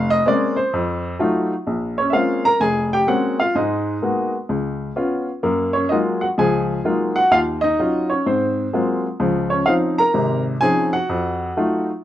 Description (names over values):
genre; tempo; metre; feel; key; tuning
solo jazz; 127 BPM; 4/4; swing 66% on 8ths; Bb minor; A4 = 442 Hz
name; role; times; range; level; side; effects
warm upright piano; solo; 0.0-11.9 s; F1 to Bb5; -17 LUFS; equal; none
room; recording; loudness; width
light reverb; dark, warm production; -17 LUFS; side -12 dB against mid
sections
0.0-1.7 A section; 1.7-12.0 B section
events
upright piano solo 0.0-1.7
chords
0.0 Bbm9; 0.7 F7b9; 1.7 Bbm9; 3.5 Abm9; 4.5 Db7; 5.4 Gbmaj13; 7.3 Ebm9; 8.2 Ab13; 9.2 Dbmaj9; 11.1 F7b9